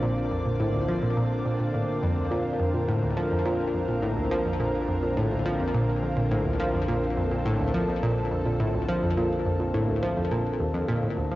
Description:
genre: ambient, sequencer-driven space music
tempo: 105 BPM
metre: 4/4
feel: straight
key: Bb major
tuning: A4 = 439 Hz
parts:
  - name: lush unison pad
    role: sustained chords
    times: 0.0-11.4 s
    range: D3 to D5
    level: -28 LUFS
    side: equal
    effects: chorus, cassette tape, shimmer reverb
  - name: analog pluck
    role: riff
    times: 0.0-11.4 s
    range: D2 to F3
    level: -26 LUFS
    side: equal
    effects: chorus, cassette tape, ping-pong delay
  - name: round analog bass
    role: bass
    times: 0.0-11.4 s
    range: Bb1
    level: -37 LUFS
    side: equal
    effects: transformer saturation
room: wet spring reverb, RT60 2.1 s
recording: home recording on cassette, nothing above 7.5 kHz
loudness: -24 LUFS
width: side -16 dB against mid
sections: 0.0-11.4 A section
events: none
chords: 0.0 Bbadd9

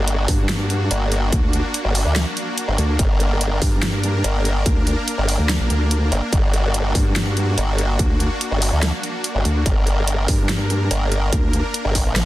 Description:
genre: heavy wobble dubstep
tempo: 144 BPM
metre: 4/4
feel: half-time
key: G harmonic minor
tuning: A4 = 441 Hz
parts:
  - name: supersaw chords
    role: sustained chords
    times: 0.0-12.3 s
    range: Bb3 to Bb4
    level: -26 LUFS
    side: equal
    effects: sidechain pumping
  - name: formant-sweep wobble bass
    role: bass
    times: 0.0-12.3 s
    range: G1 to D2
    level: -19 LUFS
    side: equal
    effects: chorus, overdrive
  - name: big-room dance drum kit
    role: drums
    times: 0.1-12.2 s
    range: hi-hat, snare drum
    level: -24 LUFS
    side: equal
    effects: overdrive
  - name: vowel-sweep wobble bass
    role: bass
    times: 0.3-11.6 s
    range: Bb1 to G2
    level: -20 LUFS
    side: equal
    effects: chorus, overdrive
  - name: electronic kick drum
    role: drums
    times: 0.3-12.0 s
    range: none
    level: -20 LUFS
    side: equal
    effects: distortion
room: little or no reverb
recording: dense, heavily limited modern master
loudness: -17 LUFS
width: side -16 dB against mid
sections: 0.0-12.3 A section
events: none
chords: 0.0 Gm

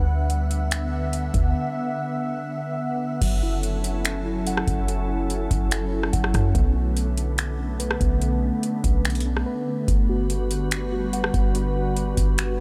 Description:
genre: hip hop, atmospheric cloud-rap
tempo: 144 BPM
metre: 4/4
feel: half-time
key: unclear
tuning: A4 = 440 Hz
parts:
  - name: glassy FM pad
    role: sustained chords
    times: 0.0-12.6 s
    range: D3 to F#5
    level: -30 LUFS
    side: equal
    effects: ensemble chorus, built-in reverb, sidechain pumping
  - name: clean 808-style bass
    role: bass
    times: 0.0-12.6 s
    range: F#1 to F#2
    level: -27 LUFS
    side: equal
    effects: none
  - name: booming analog drum machine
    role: drums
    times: 0.3-12.5 s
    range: crash cymbal, finger snaps, hi-hat, kick drum, rim click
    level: -26 LUFS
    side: equal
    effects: none
  - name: muted felt-like synth keys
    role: arpeggios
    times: 3.2-12.6 s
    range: F#3 to F#5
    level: -34 LUFS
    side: equal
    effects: chorus, tape echo
room: light reverb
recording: none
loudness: -24 LUFS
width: mono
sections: 0.0-3.2 A section; 3.2-12.6 B section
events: break 1.5-3.2, 9.5-9.9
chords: 0.0 D69; 3.2 F#m7; 6.5 Bm9; 9.9 Gmaj7

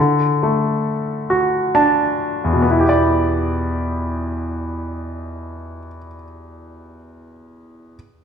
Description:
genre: pop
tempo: 43-47 BPM (dotted quarters)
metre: 6/8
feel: straight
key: E minor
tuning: A4 = 439 Hz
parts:
  - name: bright concert grand piano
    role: accompaniment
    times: 0.0-8.0 s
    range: E2 to A5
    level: -17 LUFS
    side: equal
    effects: none
room: wet recital hall reverb, RT60 1.6 s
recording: none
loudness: -16 LUFS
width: side -7 dB against mid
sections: 0.0-2.6 A section; 2.6-5.4 B section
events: slowing down 0.0-2.6; grand piano fill 1.3-2.6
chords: 0.0 D; 2.6 Em7

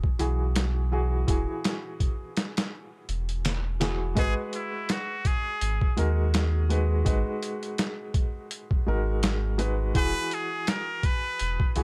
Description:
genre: trip hop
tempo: 83 BPM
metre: 4/4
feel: swing 56% on 16ths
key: G# minor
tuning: A4 = 444 Hz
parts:
  - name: felt-muted upright piano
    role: accompaniment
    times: 0.0-11.8 s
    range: E3 to D#5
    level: -35 LUFS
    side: equal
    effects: tremolo, low-pass filter, tape echo
  - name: boom bap sampler-style drum kit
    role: drums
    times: 0.0-11.8 s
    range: hi-hat, kick drum, snare drum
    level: -30 LUFS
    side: equal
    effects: none
  - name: warm sub bass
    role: bass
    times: 0.2-11.8 s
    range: E1 to D#2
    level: -29 LUFS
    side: equal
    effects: tube saturation
  - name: trumpet with straight mute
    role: melody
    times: 4.2-11.8 s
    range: E4 to B4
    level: -33 LUFS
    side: equal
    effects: tape echo
room: digital ambience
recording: none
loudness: -27 LUFS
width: mono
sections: 0.0-11.8 A section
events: none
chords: 0.0 Eadd9; 4.2 G#m7; 10.0 Eadd9

